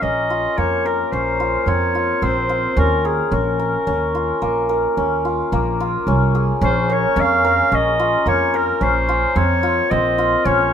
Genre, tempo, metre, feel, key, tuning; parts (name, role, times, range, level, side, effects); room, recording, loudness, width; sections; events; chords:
contemporary instrumental, chamber music in an uneven meter; 109 BPM; 7/4; straight; Bb dorian; A4 = 439 Hz
warm clarinet; melody; 0.0-10.7 s; Ab4 to F5; -20 LUFS; left 1 dB
hammered dulcimer; arpeggios; 0.0-10.7 s; Bb3 to Bb4; -19 LUFS; equal
upright bass; bass; 0.0-10.7 s; Bb1 to F2; -22 LUFS; right 1 dB
light reverb; minimal, uncompressed stereo recording; -16 LUFS; side -8 dB against mid
0.0-10.7 A section
0.0 Bbmadd9; 2.8 Eb7sus2; 6.6 Bbmadd9